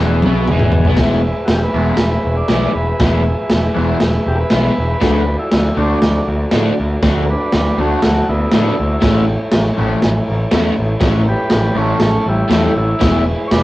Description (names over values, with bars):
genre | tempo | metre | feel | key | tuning
garage rock duo or trio | 120 BPM | 4/4 | straight | E mixolydian | A4 = 440 Hz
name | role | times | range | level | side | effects
overdriven combo organ | sustained chords | 0.0-13.6 s | E4 to G#5 | -23 LUFS | equal | none
crunchy overdriven guitar | riff | 0.0-13.2 s | E2 to F#4 | -18 LUFS | left 1 dB | phaser
growling picked electric bass | bass | 0.0-13.6 s | E1 to A2 | -18 LUFS | equal | overdrive
crunchy breakbeat drum kit | drums | 0.2-13.6 s | crash cymbal, kick drum, snare drum, toms | -16 LUFS | equal | vintage 12-bit sampler grit
overdriven combo organ | melody | 1.5-13.6 s | G3 to D5 | -21 LUFS | right 1 dB | none
room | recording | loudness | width
moderate small room reverb, RT60 0.5 s | rough rehearsal-room recording, tube saturation, cassette tape | -12 LUFS | side -17 dB against mid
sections
1.0-13.6 A section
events
drum fill 0.0-1.0; transistor combo organ fill 0.0-1.0; transistor combo organ solo 1.0-13.6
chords
0.0 E; 5.0 D; 9.0 A; 13.0 E